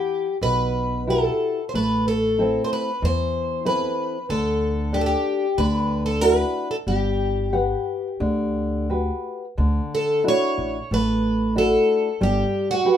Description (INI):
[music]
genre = fado-style ballad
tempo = 92 BPM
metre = 4/4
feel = rubato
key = G major, D major from 9.6 s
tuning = A4 = 439 Hz
[part]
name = picked plugged-in twelve-string acoustic guitar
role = melody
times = 0.0-13.0 s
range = F#4 to C#5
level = -23 LUFS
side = equal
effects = none
[part]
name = nylon-string guitar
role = accompaniment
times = 0.0-13.0 s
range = B2 to F#5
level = -25 LUFS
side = equal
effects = none
[part]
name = upright bass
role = bass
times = 0.4-12.4 s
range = G1 to E2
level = -25 LUFS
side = equal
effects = none
[sound]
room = moderate studio reverb, RT60 0.5 s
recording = minimal, uncompressed stereo recording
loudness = -20 LUFS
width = side -9 dB against mid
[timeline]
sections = 0.0-9.6 A section; 9.6-13.0 B section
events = none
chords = 0.0 Emadd9; 1.7 Am; 4.3 Dsus4; 5.6 Dadd9; 6.9 Gmaj7; 9.6 Dadd9; 12.2 Gmaj7